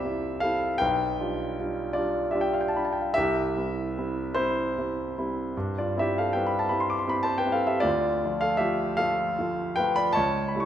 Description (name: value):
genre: classical, romantic nocturne for solo piano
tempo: 52 BPM (dotted quarters)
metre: 12/8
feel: rubato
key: C major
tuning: A4 = 439 Hz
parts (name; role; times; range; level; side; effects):
- dark grand piano; solo; 0.0-10.7 s; B1 to D6; -24 LUFS; equal; none
room: moderate concert hall reverb, RT60 2.0 s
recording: none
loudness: -24 LUFS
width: side -10 dB against mid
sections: 0.0-10.7 A section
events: none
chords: 0.0 C; 0.8 G7/B; 3.2 C; 7.9 Dm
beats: 0.82 1.98 | 3.16 4.37 5.55 6.72 | 7.86 9.02 10.16